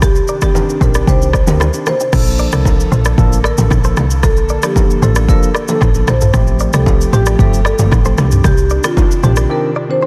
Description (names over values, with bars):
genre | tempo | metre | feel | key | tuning
afrobeats | 114 BPM | 4/4 | straight | Bb major | A4 = 441 Hz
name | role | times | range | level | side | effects
marimba with medium mallets | melody | 0.0-10.0 s | F4 to C5 | -22 LUFS | equal | delay
airy breathy pad | sustained chords | 0.2-10.1 s | C3 to A4 | -29 LUFS | equal | none
direct-recorded clean electric guitar | riff | 0.0-10.1 s | Eb4 to D5 | -28 LUFS | equal | delay
woody log drum bass | bass | 0.0-9.5 s | G1 to D2 | -16 LUFS | equal | none
afro-pop drum kit | drums | 0.0-9.5 s | crash cymbal, kick drum, rim click, shaker, toms | -17 LUFS | equal | soft clipping on snare
congas and bongos | percussion | 0.0-9.4 s | none | -27 LUFS | equal | none
tine electric piano | accompaniment | 0.4-10.1 s | Eb3 to A4 | -24 LUFS | equal | none
room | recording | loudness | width
light reverb, digital ambience | dense, heavily limited modern master | -13 LUFS | mono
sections
0.0-2.1 A section; 2.1-10.1 B section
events
break 9.5-10.1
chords
0.0 Cmadd9; 2.1 Bbmaj7; 6.3 Fadd9/A; 8.2 Cmadd9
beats
| 0.02 0.55 1.07 1.60 | 2.13 2.65 3.18 3.71 | 4.23 4.76 5.29 5.81 | 6.34 6.87 7.39 7.92 | 8.44 8.97 9.50 10.02